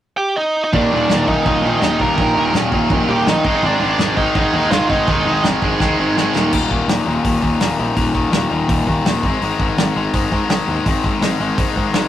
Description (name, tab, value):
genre	punk rock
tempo	166 BPM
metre	4/4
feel	straight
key	unclear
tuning	A4 = 440 Hz
part	bluesy overdriven lead guitar	melody	0.2-5.4 s	D4 to Bb5	-18 LUFS	right 2 dB	distortion
part	cranked stack guitar	riff	0.7-12.1 s	Eb2 to Ab3	-18 LUFS	left 3 dB	overdrive
part	cranked stack guitar	riff	0.7-6.5 s	Eb2 to Ab3	-19 LUFS	right 4 dB	overdrive
part	fuzz picked electric bass	bass	0.7-12.0 s	Eb1 to Ab2	-24 LUFS	equal	overdrive
part	loose indie drum kit	drums	0.7-12.0 s	crash cymbal, hi-hat, kick drum, snare drum, toms	-20 LUFS	equal	none
room	moderate booth ambience, RT60 0.2 s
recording	rough rehearsal-room recording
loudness	-14 LUFS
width	side -12 dB against mid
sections	0.7-6.5 A section; 6.5-12.1 B section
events	drum fill 5.8-6.5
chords	0.0 Eb; 0.7 Eb5; 3.5 Ab5; 6.3 Eb5; 9.2 Ab5